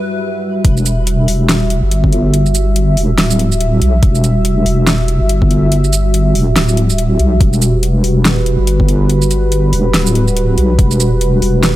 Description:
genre	deep dubstep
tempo	142 BPM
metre	4/4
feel	swing 59% on 16ths, half-time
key	E minor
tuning	A4 = 440 Hz
part	dark analog pad	sustained chords	0.0-11.8 s	G3 to E5	-17 LUFS	right 1 dB	chorus
part	deep soft wobble bass	bass	0.6-11.8 s	D1 to B1	-12 LUFS	equal	chorus
part	deep house drum kit	drums	0.6-11.7 s	hi-hat, shaker, snare drum	-17 LUFS	equal	overdrive, high-pass filter on perc, high-pass filter on hats, high-pass filter on snare
part	electronic kick drum	drums	0.6-10.9 s	none	-14 LUFS	equal	overdrive, high-pass filter on kick
room	digital ambience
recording	none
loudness	-10 LUFS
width	side -15 dB against mid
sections	0.6-11.8 A section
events	break 0.0-0.6; drop 0.6-11.8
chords	0.0 Emadd9

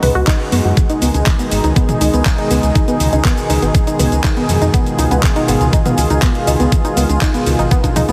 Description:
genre	progressive house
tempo	121 BPM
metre	4/4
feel	straight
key	unclear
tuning	A4 = 442 Hz
part	supersaw pad	sustained chords	0.0-8.1 s	Cb3 to Ab4	-20 LUFS	equal	sidechain pumping, low-pass filter
part	analog pluck	arpeggios	0.0-8.1 s	Cb4 to Cb5	-22 LUFS	equal	chorus, sidechain pumping, digital delay
part	round analog bass	bass	0.0-8.1 s	Ab1 to Gb2	-19 LUFS	equal	tube saturation, sidechain pumping
part	pop drum kit	drums	0.0-8.1 s	handclaps, hi-hat, shaker, toms	-25 LUFS	equal	overdrive, sidechain pumping on hats, sidechain pumping on perc, sidechain pumping on toms
part	electronic toms and congas	percussion	0.0-8.1 s	none	-24 LUFS	equal	overdrive, sidechain pumping on perc, sidechain pumping on toms
part	electronic kick drum	drums	0.3-7.9 s	none	-16 LUFS	equal	overdrive
room	light reverb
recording	heavily compressed radio sound, multiband compression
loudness	-14 LUFS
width	mono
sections	0.0-8.1 A section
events	filter sweep on synth pluck 0.0-8.1; drum fill 8.0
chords	0.0 Db9sus4; 0.8 Abm

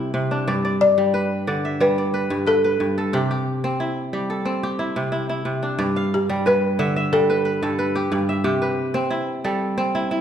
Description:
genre	west african traditional, West African string and xylophone music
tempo	90 BPM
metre	4/4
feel	straight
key	G major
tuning	A4 = 441 Hz
part	kora	arpeggios	0.0-10.2 s	G2 to F5	-21 LUFS	right 1 dB	none
part	balafon	melody	0.8-9.1 s	G4 to D5	-21 LUFS	left 1 dB	none
room	wet recital hall reverb, RT60 1.6 s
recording	recorded in a church or concert hall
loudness	-19 LUFS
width	side -9 dB against mid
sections	0.0-5.8 A section; 5.8-10.2 A section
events	none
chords	0.5 G; 3.1 C; 5.8 G; 8.5 C

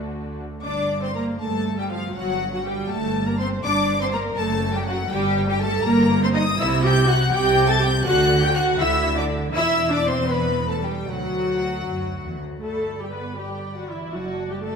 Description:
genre	quick classical-period movement for string orchestra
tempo	80 BPM (dotted quarters)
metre	6/8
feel	straight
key	G minor, G major from 6.6 s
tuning	A4 = 440 Hz
part	dark studio violin section	second line	0.0-14.8 s	D4 to B5	-26 LUFS	left 3 dB	none
part	warm studio viola section	accompaniment	0.0-14.8 s	D3 to B4	-24 LUFS	right 1 dB	none
part	warm chamber cello section	bass	0.0-14.8 s	D2 to B3	-28 LUFS	right 2 dB	none
part	warm studio double bass section	bass	0.0-14.8 s	E1 to D2	-28 LUFS	right 2 dB	none
part	clear studio violin section	melody	0.6-14.8 s	E5 to A6	-27 LUFS	left 4 dB	none
room	wet scoring stage reverb, RT60 2.0 s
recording	none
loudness	-19 LUFS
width	side -6 dB against mid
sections	0.6-12.6 A section; 12.6-14.8 B section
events	none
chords	0.0 D; 0.6 G5; 4.4 F#m; 5.1 Gmadd9; 6.6 C; 8.1 Dadd9; 9.6 C/E; 11.1 D; 12.6 G; 14.1 D/F#

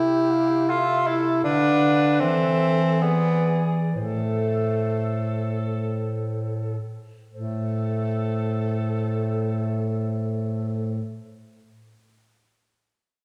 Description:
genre	classical, lyrical piece for single-reed quartet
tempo	47-82 BPM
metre	3/4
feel	rubato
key	A minor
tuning	A4 = 440 Hz
part	mellow clarinet	melody	0.0-11.0 s	C5 to G5	-37 LUFS	equal	none
part	bright alto saxophone	second line	0.0-11.0 s	G4 to B4	-36 LUFS	equal	none
part	clear tenor saxophone	accompaniment	0.0-11.0 s	A3 to F4	-26 LUFS	equal	none
part	warm bass clarinet	bass	0.0-11.0 s	A2 to E3	-28 LUFS	equal	none
room	wet recital hall reverb, RT60 1.6 s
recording	heard from further back in the room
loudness	-24 LUFS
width	mono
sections	0.0-7.3 A section; 7.3-11.1 B section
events	slowing down 0.3-7.3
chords	0.0 Am/C; 1.4 Bdim/D; 2.2 Am/E; 3.0 E7; 4.0 Am

